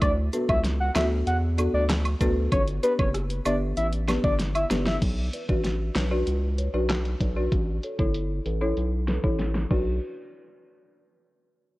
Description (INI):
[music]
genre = dancehall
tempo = 96 BPM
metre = 4/4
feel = straight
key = B minor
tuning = A4 = 439 Hz
[part]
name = soft octave-layered synth lead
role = melody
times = 0.0-5.0 s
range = B4 to F#5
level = -27 LUFS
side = equal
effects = chorus
[part]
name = round analog bass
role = bass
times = 0.0-10.0 s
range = F#1 to E2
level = -27 LUFS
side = equal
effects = none
[part]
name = pop drum kit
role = drums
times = 0.0-9.9 s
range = crash cymbal, handclaps, hi-hat, kick drum, rim click, snare drum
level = -27 LUFS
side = equal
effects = overdrive
[part]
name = woodblock and cabasa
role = percussion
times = 0.0-4.9 s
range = none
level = -35 LUFS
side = right 2 dB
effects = none
[part]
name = folk marimba with medium mallets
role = accompaniment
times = 0.3-10.0 s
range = B3 to E5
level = -30 LUFS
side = left 1 dB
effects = none
[sound]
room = digital ambience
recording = worn, warbling old tape, cassette tape, warbly pitch drift, low-pass filter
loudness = -23 LUFS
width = side -19 dB against mid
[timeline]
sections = 0.0-5.0 A section; 5.0-10.0 B section; 10.0-11.8 C section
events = drum fill 4.4-5.0, 9.4-10.0; filter sweep 5.0-10.0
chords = 0.0 D6; 2.5 G; 5.0 Bm; 7.5 A; 9.7 Bm; 10.0 N.C.